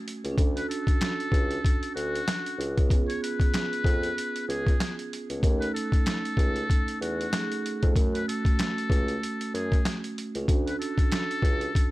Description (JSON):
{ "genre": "hip hop, boom-bap hip-hop", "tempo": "95 BPM", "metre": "4/4", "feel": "swing 57% on 16ths", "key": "F# harmonic minor", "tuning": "A4 = 439 Hz", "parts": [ { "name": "vibraphone with soft mallets", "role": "accompaniment", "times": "0.0-11.9 s", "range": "A3 to A4", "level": "-32 LUFS", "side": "right 3 dB", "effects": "cassette tape, high-pass filter, low-pass filter" }, { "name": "boom bap sampler-style drum kit", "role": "drums", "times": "0.1-11.9 s", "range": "hi-hat, kick drum, snare drum", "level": "-25 LUFS", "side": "equal", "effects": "none" }, { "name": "dark bassoon", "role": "bass", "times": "0.2-11.7 s", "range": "C#2 to F#2", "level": "-31 LUFS", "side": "equal", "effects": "none" }, { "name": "trumpet with metal mute", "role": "melody", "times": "0.6-11.9 s", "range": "F#4 to C#5", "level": "-33 LUFS", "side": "left 2 dB", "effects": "high-pass filter, low-pass filter, ping-pong delay" } ], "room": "little or no reverb", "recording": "none", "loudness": "-24 LUFS", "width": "side -18 dB against mid", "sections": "0.0-11.9 A section", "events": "none", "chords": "0.4 Dmaj7; 2.6 C#7; 5.4 F#m69; 8.0 F#m; 10.5 Dmaj7" }